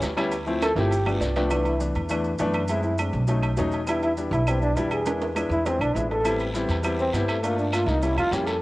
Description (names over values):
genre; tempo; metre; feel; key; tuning
Afro-Cuban jazz; 203 BPM; 4/4; straight; C major; A4 = 441 Hz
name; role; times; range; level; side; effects
breathy trombone; melody; 0.0-8.6 s; A3 to A4; -27 LUFS; equal; cassette tape
warm baby grand piano; accompaniment; 0.0-8.5 s; E3 to G5; -26 LUFS; left 2 dB; cassette tape
upright bass; bass; 0.0-8.6 s; G1 to G2; -27 LUFS; equal; none
guiro; percussion; 0.0-1.5, 6.2-8.6 s; none; -38 LUFS; left 2 dB; none
maracas; percussion; 0.0-8.6 s; none; -45 LUFS; right 3 dB; none
timbales and agogo bells; percussion; 0.0-8.6 s; none; -32 LUFS; right 3 dB; none
claves; percussion; 0.2-8.3 s; none; -38 LUFS; right 2 dB; none
room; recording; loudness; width
light reverb, studio reverb; home recording on cassette; -22 LUFS; side -19 dB against mid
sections
0.0-1.5 A section; 1.5-8.6 A section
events
trombone solo 0.0-8.6; drum fill 0.6-1.5, 5.1-6.2; grand piano fill 1.1-1.5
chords
0.3 Dm7; 0.9 G7; 1.5 Cmaj13; 2.7 F#m7b5; 3.3 B7; 3.9 Em7; 5.1 E7; 6.2 Am9; 7.4 Gm9; 8.0 C7b9